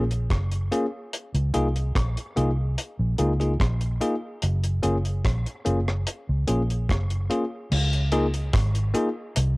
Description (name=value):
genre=lovers rock reggae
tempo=73 BPM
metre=4/4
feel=straight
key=Db major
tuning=A4 = 440 Hz
part: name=bell-like tine electric piano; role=accompaniment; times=0.0-9.1 s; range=Bb3 to Ab4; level=-27 LUFS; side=left 1 dB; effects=cassette tape
part: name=vintage muted fingered electric bass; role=bass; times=0.0-9.6 s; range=Gb1 to Db2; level=-23 LUFS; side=equal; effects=none
part: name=deep reggae drum kit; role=drums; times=0.1-9.6 s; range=crash cymbal, hi-hat, kick drum, rim click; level=-27 LUFS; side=equal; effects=cassette tape
room=light reverb, studio reverb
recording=home recording on cassette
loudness=-22 LUFS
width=side -24 dB against mid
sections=0.0-7.7 A section; 7.7-9.6 B section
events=none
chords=0.0 Gbmaj7; 1.1 Db6; 4.4 Gbmaj7; 7.7 Db6